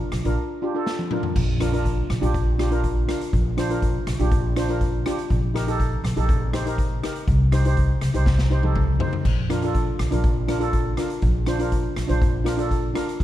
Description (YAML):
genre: calypso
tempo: 122 BPM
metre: 4/4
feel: straight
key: Bb major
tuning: A4 = 440 Hz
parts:
  - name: steel pan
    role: accompaniment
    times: 0.0-13.2 s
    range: D4 to C5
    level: -26 LUFS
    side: equal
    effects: none
  - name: upright bass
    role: bass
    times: 0.1-13.2 s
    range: Bb1 to C2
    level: -23 LUFS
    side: equal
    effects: none
  - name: street-band drum kit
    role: drums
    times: 0.1-13.2 s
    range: crash cymbal, hi-hat, kick drum, rim click, snare drum, toms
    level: -25 LUFS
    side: equal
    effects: none
room: little or no reverb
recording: dark, warm production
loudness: -20 LUFS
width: side -13 dB against mid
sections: 0.0-1.4 A section; 1.4-13.2 A section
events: drum fill 0.9-1.4, 8.3-9.3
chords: 0.0 Bb; 5.3 Eb/Bb; 7.3 Cm; 9.3 Bb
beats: 0.37 0.87 | 1.36 1.85 2.34 2.84 | 3.33 3.82 4.32 4.81 | 5.30 5.80 6.29 6.78 | 7.28 7.77 8.26 8.76 | 9.25 9.74 10.24 10.73 | 11.22 11.72 12.21 12.71 | 13.20